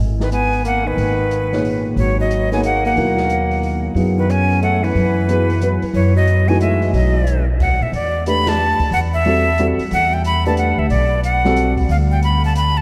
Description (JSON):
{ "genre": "modal jazz", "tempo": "181 BPM", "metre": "3/4", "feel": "swing 64% on 8ths", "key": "G# minor, E minor from 7.9 s", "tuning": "A4 = 440 Hz", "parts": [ { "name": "upright bass", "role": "bass", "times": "0.0-12.8 s", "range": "G#1 to B2", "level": "-20 LUFS", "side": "equal", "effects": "none" }, { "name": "breathy bright jazz flute", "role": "melody", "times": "0.2-12.8 s", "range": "B4 to B5", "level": "-22 LUFS", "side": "equal", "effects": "none" }, { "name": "breathy tenor saxophone", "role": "second line", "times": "0.2-7.4 s", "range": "D#3 to C#4", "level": "-26 LUFS", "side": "equal", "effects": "none" }, { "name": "open jazz drum kit", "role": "drums", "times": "0.2-12.7 s", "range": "crash cymbal, hi-hat, kick drum, ride cymbal, snare drum", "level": "-30 LUFS", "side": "equal", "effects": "none" }, { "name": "dark upright piano", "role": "accompaniment", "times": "1.5-11.9 s", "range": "A#2 to C#5", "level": "-24 LUFS", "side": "equal", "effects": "none" } ], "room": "wet cathedral reverb, RT60 5.3 s", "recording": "in a vast, echoing space", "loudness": "-17 LUFS", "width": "mono", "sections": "0.0-7.9 A section; 7.9-12.8 B section", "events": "band accent 8.4", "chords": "0.0 G#m9; 4.0 F#m9; 6.9 B; 7.9 Em11; 11.9 N.C." }